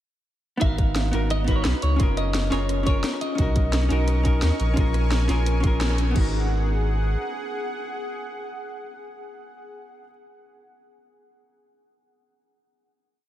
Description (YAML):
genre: liquid drum and bass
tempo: 173 BPM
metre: 4/4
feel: swing 54% on 16ths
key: G# dorian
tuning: A4 = 443 Hz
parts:
  - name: semi-hollow electric guitar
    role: melody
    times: 0.6-3.7 s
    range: B4 to E#5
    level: -32 LUFS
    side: equal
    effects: wide subtle chorus, diffuse ambient delay
  - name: vintage hollow-body jazz guitar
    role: accompaniment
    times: 0.6-10.1 s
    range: B3 to A#4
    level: -28 LUFS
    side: right 1 dB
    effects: diffuse ambient delay
  - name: warm sub bass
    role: bass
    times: 0.6-7.2 s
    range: F#1 to D#2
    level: -23 LUFS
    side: equal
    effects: none
  - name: drum and bass drum kit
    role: drums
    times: 0.6-6.2 s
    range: crash cymbal, hi-hat, rim click, snare drum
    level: -31 LUFS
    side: equal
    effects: none
  - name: electronic kick drum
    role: drums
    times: 0.6-6.2 s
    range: none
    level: -22 LUFS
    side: equal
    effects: none
  - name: lush unison pad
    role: sustained chords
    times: 3.4-9.7 s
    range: G#4 to C#6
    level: -33 LUFS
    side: equal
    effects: chorus, sidechain pumping
room: moderate cathedral reverb, RT60 5.0 s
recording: dreamy mix soaked in reverb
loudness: -20 LUFS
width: side -13 dB against mid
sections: 0.6-6.2 drop; 6.2-8.9 final chord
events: drop 0.6-6.2; band accent 5.8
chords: 0.6 G#m7; 2.0 F#maj9; 3.4 Bmaj9; 4.6 A#m7; 6.2 G#m7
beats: | 0.61 0.96 1.30 1.65 | 2.00 2.34 2.69 3.04 | 3.38 3.73 4.08 4.42 | 4.77 5.12 5.46 5.81 | 6.16 6.50 6.85 7.20 | 7.55 7.89 8.24 8.59